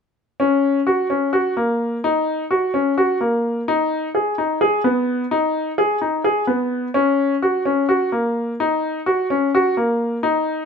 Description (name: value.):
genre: contemporary instrumental, contemporary.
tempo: 256 BPM (eighths).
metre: 7/8.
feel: straight.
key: F# major.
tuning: A4 = 440 Hz.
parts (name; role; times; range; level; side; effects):
clear grand piano; solo; 0.4-10.6 s; A#3 to G#4; -17 LUFS; left 1 dB; none.
room: moderate studio reverb, RT60 0.8 s.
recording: none.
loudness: -17 LUFS.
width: side -6 dB against mid.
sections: 0.4-10.7 A section.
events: none.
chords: none.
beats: | 0.40 0.63 0.87 1.10 1.33 1.57 1.80 | 2.04 2.27 2.51 2.74 2.97 3.21 3.44 | 3.68 3.91 4.14 4.38 4.61 4.85 5.08 | 5.32 5.55 5.78 6.02 6.25 6.49 6.72 | 6.96 7.19 7.42 7.66 7.89 8.13 8.36 | 8.59 8.83 9.06 9.30 9.53 9.76 10.00 | 10.23 10.47.